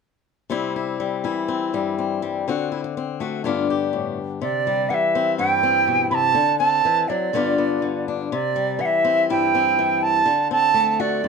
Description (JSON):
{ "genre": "highlife", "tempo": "123 BPM", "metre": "4/4", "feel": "straight", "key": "C major", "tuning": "A4 = 440 Hz", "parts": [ { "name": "fingerpicked swing-style acoustic guitar", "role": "accompaniment", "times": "0.5-11.3 s", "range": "G2 to G4", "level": "-23 LUFS", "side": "left 7 dB", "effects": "none" }, { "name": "bright wooden flute", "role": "melody", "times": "4.4-11.3 s", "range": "D5 to B5", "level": "-18 LUFS", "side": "right 5 dB", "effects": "none" } ], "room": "moderate studio reverb, RT60 0.8 s", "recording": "none", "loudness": "-19 LUFS", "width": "side -5 dB against mid", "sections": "0.5-4.4 A section; 4.4-11.3 B section", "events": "none", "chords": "0.5 C; 2.5 D7; 3.4 G7; 4.4 C; 6.4 D7; 7.3 G7; 8.3 C; 10.3 D7", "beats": "| 0.50 0.99 1.48 1.97 | 2.46 2.94 3.43 3.92 | 4.41 4.90 5.38 5.87 | 6.36 6.84 7.33 7.82 | 8.30 8.79 9.28 9.76 | 10.25 10.74 11.22" }